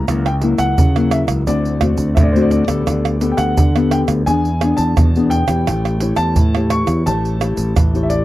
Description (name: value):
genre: samba and choro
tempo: 86 BPM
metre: 4/4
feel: straight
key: unclear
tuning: A4 = 440 Hz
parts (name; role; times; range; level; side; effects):
- warm grand piano; melody; 0.0-8.2 s; C5 to C#6; -22 LUFS; left 1 dB; none
- nylon-string guitar; accompaniment; 0.0-8.2 s; A2 to C#5; -19 LUFS; left 3 dB; none
- growling fingered electric bass; bass; 0.0-8.2 s; A1 to D3; -18 LUFS; equal; overdrive
- tube shaker, surdo, pandeiro and tamborim; percussion; 0.1-8.2 s; none; -17 LUFS; right 2 dB; none
room: light reverb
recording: dry, close 1970s-style studio recording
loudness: -13 LUFS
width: side -15 dB against mid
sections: 0.0-8.2 A section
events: none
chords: 0.1 F#7/C#; 1.5 D7; 2.9 Gadd9/D; 4.3 E7; 5.7 A7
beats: | 0.09 0.79 1.49 2.18 | 2.88 3.58 4.28 4.97 | 5.67 6.37 7.07 7.76